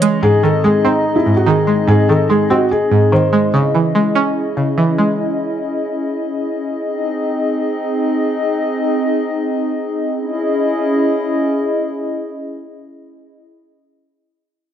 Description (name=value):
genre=hip hop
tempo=145 BPM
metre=4/4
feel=half-time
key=C# harmonic minor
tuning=A4 = 441 Hz
part: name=felt-muted upright piano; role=melody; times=0.0-3.5 s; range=D#4 to C#5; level=-16 LUFS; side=left 2 dB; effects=none
part: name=string-like resonator pluck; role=accompaniment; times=0.0-6.0 s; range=G#2 to C#4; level=-14 LUFS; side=right 2 dB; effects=chorus
part: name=hollow soft pad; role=sustained chords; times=0.0-13.4 s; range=E3 to D#5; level=-18 LUFS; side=left 1 dB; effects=chorus
room=light reverb, digital ambience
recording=dark, warm production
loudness=-14 LUFS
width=side -9 dB against mid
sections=0.0-10.2 A section; 10.2-13.5 B section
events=none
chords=0.2 G#; 3.5 C#madd9; 6.8 G#; 10.2 C#madd9